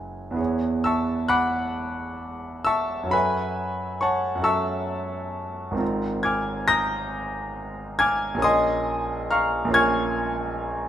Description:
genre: classical, impressionist solo piano.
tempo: 45 BPM (dotted quarters).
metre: 6/8.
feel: rubato.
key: unclear.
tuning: A4 = 438 Hz.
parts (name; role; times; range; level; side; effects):
clear concert grand piano; solo; 0.0-10.9 s; F#1 to A#6; -22 LUFS; equal; none.
room: moderate large studio reverb, RT60 1.2 s.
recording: minimal, uncompressed stereo recording.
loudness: -22 LUFS.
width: side -10 dB against mid.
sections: 0.4-10.9 A section.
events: none.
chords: 0.4 E69; 3.1 F#m7; 5.8 G#69; 8.4 A#m7.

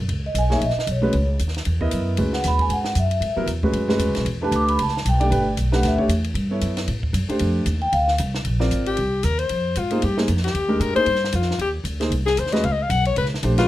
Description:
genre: modal jazz.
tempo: 230 BPM.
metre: 4/4.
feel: swing 58% on 8ths.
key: unclear.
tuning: A4 = 441 Hz.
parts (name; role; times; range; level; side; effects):
upright bass; bass; 0.0-13.7 s; G1 to A2; -22 LUFS; equal; none.
compact cocktail drum kit; drums; 0.1-13.6 s; hi-hat, kick drum, ride cymbal, snare drum; -31 LUFS; left 1 dB; none.
vibraphone with soft mallets; melody; 0.3-8.0 s; C#5 to D6; -23 LUFS; equal; plate reverb.
warm grand piano; accompaniment; 0.5-13.7 s; F#3 to D#5; -23 LUFS; right 1 dB; none.
bright alto saxophone; second line; 8.9-13.7 s; F4 to Gb5; -22 LUFS; left 4 dB; none.
room: moderate club reverb, RT60 0.5 s.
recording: none.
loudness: -19 LUFS.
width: side -15 dB against mid.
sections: 0.1-8.4 A section; 8.4-13.7 A section.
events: vibraphone solo 0.0-8.4; alto saxophone solo 8.4-13.7.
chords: 0.1 C#m11; 4.3 Em11; 7.4 F13; 8.4 Bb13sus4; 12.6 Db7(no3).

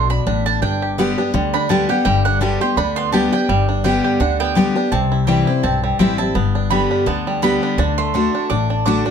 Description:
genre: bluegrass.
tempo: 168 BPM.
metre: 4/4.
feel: swing 55% on 8ths.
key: G major.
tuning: A4 = 440 Hz.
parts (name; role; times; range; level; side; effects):
picked steel-string acoustic guitar; accompaniment; 0.0-9.1 s; G2 to G4; -18 LUFS; left 3 dB; none.
bluegrass banjo; arpeggios; 0.0-9.1 s; G3 to G4; -21 LUFS; right 3 dB; none.
mandolin; stabs; 0.0-9.1 s; F#5 to D6; -24 LUFS; right 7 dB; none.
upright bass; bass; 0.0-9.0 s; G1 to D2; -23 LUFS; equal; none.
room: moderate small room reverb, RT60 0.5 s.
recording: none.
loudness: -15 LUFS.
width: side -7 dB against mid.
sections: 0.0-9.1 A section.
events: mandolin solo 0.0-9.1.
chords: 0.0 D5; 0.6 G; 4.9 C; 6.4 G; 7.8 D.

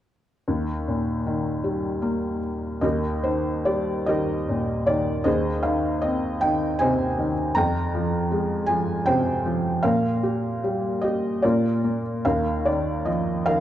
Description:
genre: classical, lyrical solo piano.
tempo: 72-81 BPM.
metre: 3/4.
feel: rubato.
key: Eb major.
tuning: A4 = 436 Hz.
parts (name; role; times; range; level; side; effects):
felt-muted upright piano; solo; 0.5-13.6 s; Eb2 to Bb5; -21 LUFS; equal; none.
room: moderate concert hall reverb, RT60 1.9 s.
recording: dark, warm production.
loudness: -22 LUFS.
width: side -12 dB against mid.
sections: 0.5-2.8 A section; 2.8-13.6 B section.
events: none.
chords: 0.5 Eb; 5.3 Ab/Eb; 7.6 Fmadd9; 9.8 Ebadd9/Bb; 11.4 Bb; 12.2 Ebsus2.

